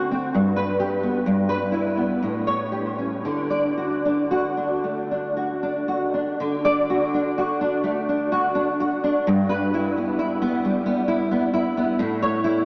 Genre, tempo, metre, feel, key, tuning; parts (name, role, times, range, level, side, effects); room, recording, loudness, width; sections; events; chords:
romantic piece for solo classical guitar; 56-68 BPM; 3/4; rubato; D major; A4 = 440 Hz
nylon-string guitar; solo; 0.0-12.7 s; G2 to D5; -23 LUFS; equal; ensemble chorus, analog delay
wet huge ambient reverb, RT60 8.1 s; dreamy mix soaked in reverb, small speaker sound; -23 LUFS; mono
0.0-6.4 A section; 6.4-12.7 A section
0.4 G; 1.3 Em/G; 2.2 A7; 3.2 D; 9.3 Em/G; 12.0 A